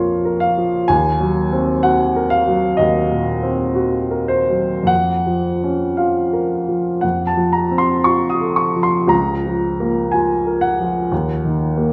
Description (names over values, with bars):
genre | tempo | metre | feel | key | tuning
classical, romantic nocturne for solo piano | 51-64 BPM | 4/4 | rubato | Bb minor | A4 = 442 Hz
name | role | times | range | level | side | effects
warm baby grand piano | solo | 0.0-11.9 s | Db2 to Eb6 | -18 LUFS | equal | none
room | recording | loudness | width
moderate recital hall reverb, RT60 1.5 s | none | -18 LUFS | mono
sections
0.0-11.9 A section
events
none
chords
0.0 Bbm; 0.9 Cm7b5/Eb; 4.9 Bbm/F; 7.0 F; 9.1 Bbm/Db; 11.1 Ebm